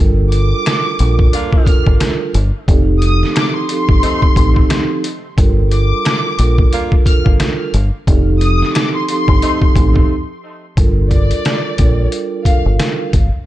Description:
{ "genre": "hip hop, boom-bap hip-hop", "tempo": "89 BPM", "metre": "4/4", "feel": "swing 58% on 16ths", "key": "G minor", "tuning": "A4 = 440 Hz", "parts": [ { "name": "vibraphone with soft mallets", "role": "accompaniment", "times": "0.0-13.1 s", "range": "F3 to Bb4", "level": "-19 LUFS", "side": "right 4 dB", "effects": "high-pass filter, low-pass filter" }, { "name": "deep dub fingered electric bass", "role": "bass", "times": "0.0-13.3 s", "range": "F1 to Bb1", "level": "-14 LUFS", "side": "equal", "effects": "none" }, { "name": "warm studio violin section", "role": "melody", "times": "0.3-12.6 s", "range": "D5 to F6", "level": "-22 LUFS", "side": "left 2 dB", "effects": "high-pass filter, low-pass filter, tape echo" }, { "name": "trip hop sampler-style drum kit", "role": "drums", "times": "0.3-13.3 s", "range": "hi-hat, kick drum, rim click, snare drum", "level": "-14 LUFS", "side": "equal", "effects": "none" }, { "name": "finger snap", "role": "percussion", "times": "0.7-8.9 s", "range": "none", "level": "-28 LUFS", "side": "left 7 dB", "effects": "none" }, { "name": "warm saxophone section", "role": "stabs", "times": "1.3-9.6 s", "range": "A3 to F4", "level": "-27 LUFS", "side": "equal", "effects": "high-pass filter, low-pass filter, tape echo" } ], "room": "little or no reverb", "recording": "dark, warm production, nothing above 10.5 kHz", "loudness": "-11 LUFS", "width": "side -14 dB against mid", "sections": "0.0-10.8 A section; 10.8-13.5 B section", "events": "break 10.1-10.8", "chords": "0.0 Gm9; 2.7 F7; 5.4 Gm9; 8.1 F7; 10.8 Gm9" }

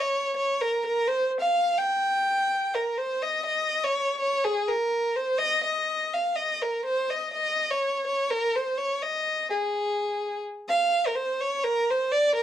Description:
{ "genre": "mexican folk", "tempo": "125 BPM", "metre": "2/4", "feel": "straight", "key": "unclear", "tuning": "A4 = 440 Hz", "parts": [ { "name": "rich violin", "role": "solo", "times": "0.0-12.4 s", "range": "Ab4 to G5", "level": "-24 LUFS", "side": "equal", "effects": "none" } ], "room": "moderate small room reverb, RT60 0.5 s", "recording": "heard from further back in the room", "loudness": "-24 LUFS", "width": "side -11 dB against mid", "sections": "0.0-10.7 A section; 10.7-12.4 B section", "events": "none", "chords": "none" }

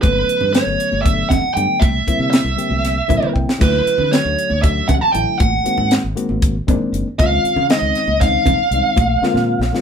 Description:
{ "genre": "electric jazz fusion", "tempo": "235 BPM (eighths)", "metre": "7/8", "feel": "straight", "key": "unclear", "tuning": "A4 = 442 Hz", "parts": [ { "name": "smooth overdriven lead guitar", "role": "melody", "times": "0.0-9.8 s", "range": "B4 to A5", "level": "-17 LUFS", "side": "right 2 dB", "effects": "none" }, { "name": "reed electric piano", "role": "accompaniment", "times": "0.0-9.8 s", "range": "D3 to G5", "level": "-22 LUFS", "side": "left 4 dB", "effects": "none" }, { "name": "fingered electric bass", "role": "bass", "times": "0.0-9.7 s", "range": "F#1 to D3", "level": "-22 LUFS", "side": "equal", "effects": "none" }, { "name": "tight funk drum kit", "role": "drums", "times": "0.0-9.8 s", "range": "crash cymbal, hi-hat, kick drum, snare drum, toms", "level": "-18 LUFS", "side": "equal", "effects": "none" }, { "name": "congas", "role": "percussion", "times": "0.0-9.8 s", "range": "none", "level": "-24 LUFS", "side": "right 2 dB", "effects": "none" } ], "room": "moderate small room reverb, RT60 0.5 s", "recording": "band playing live in one room", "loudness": "-14 LUFS", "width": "side -7 dB against mid", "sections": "0.0-9.8 A section", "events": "reed electric piano fill 2.8-3.6; drum fill 3.2-3.6, 9.2-9.8", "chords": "0.0 Gmaj9#11; 1.8 C9; 3.6 Dmaj9; 5.4 G#7; 7.2 C#maj9; 9.0 Bb9" }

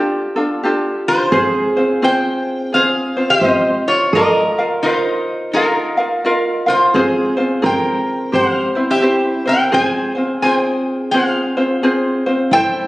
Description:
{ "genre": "Hawaiian", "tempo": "86 BPM", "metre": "4/4", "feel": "swing 62% on 8ths", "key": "F minor", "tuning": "A4 = 442 Hz", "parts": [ { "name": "ukulele", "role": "accompaniment", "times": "0.0-12.9 s", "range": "C4 to F5", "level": "-17 LUFS", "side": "equal", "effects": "none" }, { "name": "metal-body resonator slide guitar", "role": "melody", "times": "1.1-12.9 s", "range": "Eb4 to Ab5", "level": "-17 LUFS", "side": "equal", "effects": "none" }, { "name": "fingerpicked steel-string acoustic guitar", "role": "second line", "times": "1.3-12.9 s", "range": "E4 to C5", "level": "-21 LUFS", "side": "right 2 dB", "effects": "none" } ], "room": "wet recital hall reverb, RT60 1.4 s", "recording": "recorded on a phone in the room, studio reverb", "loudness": "-13 LUFS", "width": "side -18 dB against mid", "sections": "0.0-1.3 A section; 1.3-12.5 B section", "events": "none", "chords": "0.0 F69; 1.3 Fm; 4.1 Bbsus4; 6.9 Fm/C; 8.3 C; 9.7 Fm" }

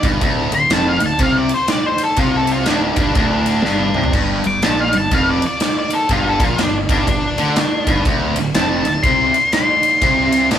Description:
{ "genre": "blues rock power trio and southern rock", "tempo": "122 BPM", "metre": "4/4", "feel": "swing 62% on 8ths", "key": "unclear", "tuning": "A4 = 441 Hz", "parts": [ { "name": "octave-fuzz lead guitar", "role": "melody", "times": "0.0-10.5 s", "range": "D4 to D6", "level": "-18 LUFS", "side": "left 2 dB", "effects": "distortion" }, { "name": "tight distorted guitar", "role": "riff", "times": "0.0-10.6 s", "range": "D2 to D3", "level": "-18 LUFS", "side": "equal", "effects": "distortion" }, { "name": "fuzz fingered electric bass", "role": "bass", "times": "0.0-10.6 s", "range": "D1 to D2", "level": "-24 LUFS", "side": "equal", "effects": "overdrive" }, { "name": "big rock drum kit", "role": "drums", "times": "0.0-10.6 s", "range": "crash cymbal, kick drum, ride cymbal, snare drum, toms", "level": "-19 LUFS", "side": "equal", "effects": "none" } ], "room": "moderate small room reverb, RT60 0.5 s", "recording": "rough rehearsal-room recording", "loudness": "-14 LUFS", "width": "side -10 dB against mid", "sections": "0.0-10.6 A section", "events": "lead electric guitar solo 0.0-10.6; drum fill 3.7-4.1", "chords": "0.2 Dm7; 4.1 G5; 8.1 D5" }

